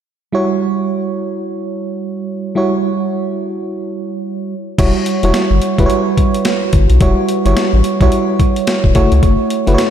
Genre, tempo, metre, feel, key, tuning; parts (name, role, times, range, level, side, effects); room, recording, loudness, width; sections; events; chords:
R&B, new jack swing; 108 BPM; 4/4; swing 60% on 16ths; E dorian; A4 = 441 Hz
FM electric piano with auto-pan; accompaniment; 0.3-9.9 s; G3 to C#5; -15 LUFS; right 2 dB
round analog bass; bass; 4.8-9.8 s; E1 to C#2; -13 LUFS; left 1 dB
breakbeat sampler-style drum kit; drums; 4.8-9.9 s; crash cymbal, hi-hat, kick drum, snare drum; -16 LUFS; left 1 dB
moderate lush hall reverb, RT60 2.3 s; dreamy mix soaked in reverb; -13 LUFS; side -9 dB against mid
0.3-4.8 A section; 4.8-9.9 B section
0.3 Em69; 4.5 N.C.; 4.8 Em69; 8.9 F#m7